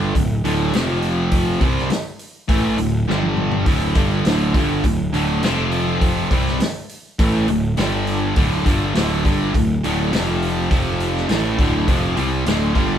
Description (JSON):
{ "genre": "blues rock power trio and southern rock", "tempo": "102 BPM", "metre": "4/4", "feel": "straight", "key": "D minor", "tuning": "A4 = 440 Hz", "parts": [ { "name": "distorted electric guitar", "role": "riff", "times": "0.0-13.0 s", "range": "D2 to C4", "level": "-20 LUFS", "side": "equal", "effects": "distortion" }, { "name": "fuzz picked electric bass", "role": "bass", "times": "0.0-13.0 s", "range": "D1 to C2", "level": "-22 LUFS", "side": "equal", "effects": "overdrive" }, { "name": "vintage drum kit", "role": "drums", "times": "0.2-12.9 s", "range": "hi-hat, kick drum, snare drum, toms", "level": "-21 LUFS", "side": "equal", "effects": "none" } ], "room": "moderate studio reverb, RT60 0.5 s", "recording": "band playing live in one room", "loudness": "-16 LUFS", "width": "side -9 dB against mid", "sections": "0.0-13.0 A section", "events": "drum fill 3.1-3.7", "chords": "0.0 D5; 0.7 F5; 1.6 D5; 3.1 G5; 3.7 D5; 5.4 F5; 6.3 D5; 7.8 G5; 8.4 D5; 10.1 F5; 11.3 Dm", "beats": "0.15 0.73 | 1.32 1.91 2.49 3.08 | 3.67 4.25 4.84 5.43 | 6.02 6.60 7.19 7.78 | 8.36 8.95 9.53 10.12 | 10.70 11.29 11.88 12.46" }